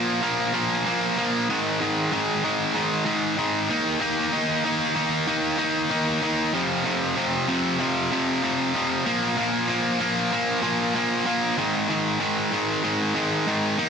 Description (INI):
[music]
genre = rock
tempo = 95 BPM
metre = 4/4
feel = straight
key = unclear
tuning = A4 = 443 Hz
[part]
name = distorted electric guitar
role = solo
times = 0.0-13.9 s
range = F2 to Eb4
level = -21 LUFS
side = equal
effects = overdrive, analog delay
[sound]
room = moderate large studio reverb, RT60 0.9 s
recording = dense, heavily limited modern master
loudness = -21 LUFS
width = side -6 dB against mid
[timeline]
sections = 0.0-13.9 A section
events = none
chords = 0.0 Bb5; 1.5 Ab5; 3.7 Eb5; 6.5 F5; 9.1 Bb5; 11.6 Ab5